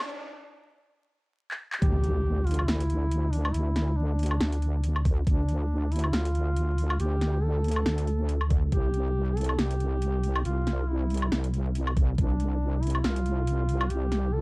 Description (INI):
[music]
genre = deep dubstep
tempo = 139 BPM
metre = 4/4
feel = swing 56% on 16ths, half-time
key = unclear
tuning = A4 = 440 Hz
[part]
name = deep house drum kit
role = drums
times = 0.0-14.2 s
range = handclaps, hi-hat, snare drum, woodblock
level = -31 LUFS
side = equal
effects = overdrive, cassette tape
[part]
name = riser and impact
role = sound effects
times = 0.0-3.5 s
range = none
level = -35 LUFS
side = equal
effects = none
[part]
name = mellow duduk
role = melody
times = 1.8-14.4 s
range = D4 to A4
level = -33 LUFS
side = equal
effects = cassette tape, dub echo
[part]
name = wobble bass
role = bass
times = 1.8-14.4 s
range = C2 to D2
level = -26 LUFS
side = equal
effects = chorus
[part]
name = electronic kick drum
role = drums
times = 1.8-1.9, 5.1-5.4, 8.5-8.8, 12.0-12.3 s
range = none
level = -24 LUFS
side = equal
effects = high-pass filter on kick, cassette tape
[sound]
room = light reverb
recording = home recording on cassette, vinyl crackle, high-pass filter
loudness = -24 LUFS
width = side -27 dB against mid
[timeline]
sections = 0.0-1.8 A section; 1.8-14.4 B section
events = build-up 0.0-1.8; break 0.1-1.8; drum fill 1.5-1.8; drop 1.8-14.4; impact 1.8-3.5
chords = 0.0 N.C.; 8.7 C5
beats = | 0.09 0.52 0.95 1.39 | 1.82 2.25 2.68 3.11 | 3.54 3.98 4.41 4.84 | 5.27 5.70 6.13 6.57 | 7.00 7.43 7.86 8.29 | 8.72 9.16 9.59 10.02 | 10.45 10.88 11.31 11.75 | 12.18 12.61 13.04 13.47 | 13.90 14.34